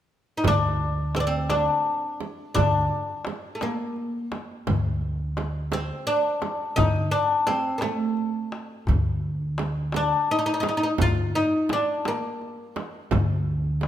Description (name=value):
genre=Arabic maqam ensemble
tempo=57 BPM (dotted quarters)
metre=6/8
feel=straight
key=D maqam kurd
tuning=A4 = 444 Hz
part: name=oud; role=melody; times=0.4-13.1 s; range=A3 to F4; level=-24 LUFS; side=left 1 dB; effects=none
part: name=upright bass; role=bass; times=0.4-13.9 s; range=D2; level=-27 LUFS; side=right 1 dB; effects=none
part: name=darbuka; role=percussion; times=0.4-13.9 s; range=none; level=-29 LUFS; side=left 2 dB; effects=none
part: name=frame drum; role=percussion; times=0.4-13.9 s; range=none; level=-32 LUFS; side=right 6 dB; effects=none
room=moderate recital hall reverb, RT60 1.7 s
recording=minimal, uncompressed stereo recording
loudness=-22 LUFS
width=side -11 dB against mid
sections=0.4-13.9 A section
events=none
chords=none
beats=| 0.44 1.49 | 2.55 3.60 | 4.66 5.71 | 6.77 7.83 | 8.88 9.94 | 11.00 12.05 | 13.11